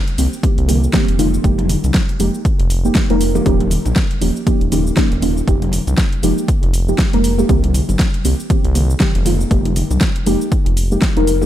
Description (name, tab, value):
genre	deep house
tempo	119 BPM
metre	4/4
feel	swing 58% on 16ths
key	F minor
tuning	A4 = 441 Hz
part	deep house drum kit	drums	0.1-11.5 s	hi-hat, shaker, snare drum	-23 LUFS	equal	overdrive
part	deep mellow chord stab	stabs	0.2-11.5 s	Eb3 to Bb4	-19 LUFS	right 1 dB	analog chorus, analog delay
part	round analog bass	bass	0.2-11.5 s	Eb1 to C2	-18 LUFS	equal	sidechain pumping
part	electronic kick drum	drums	0.4-11.1 s	none	-17 LUFS	equal	overdrive
part	bongos and congas	percussion	0.7-11.5 s	none	-26 LUFS	left 2 dB	sidechain pumping on perc
room	light reverb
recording	none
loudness	-13 LUFS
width	side -12 dB against mid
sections	0.0-11.5 A section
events	none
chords	0.0 Cm7; 1.2 Fm11; 3.5 Eb9; 5.5 Fm11; 7.5 Cm7; 9.3 Fm11